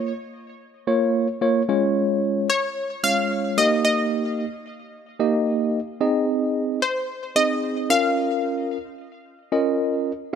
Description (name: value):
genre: pop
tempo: 111 BPM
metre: 4/4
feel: straight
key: unclear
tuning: A4 = 435 Hz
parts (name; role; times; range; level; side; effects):
- analog pluck; melody; 0.0-9.5 s; C5 to F5; -22 LUFS; left 1 dB; chorus, tape echo
- tine electric piano; accompaniment; 0.0-10.4 s; Ab3 to F5; -21 LUFS; equal; medium stereo tremolo
room: light reverb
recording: none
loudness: -20 LUFS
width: side -7 dB against mid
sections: 0.0-1.7 A section; 1.7-10.4 B section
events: build-up 0.0-1.7; drop 1.7-10.4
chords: 0.0 Bbm; 1.7 Db; 3.6 Eb; 6.0 Ab; 7.9 Bbm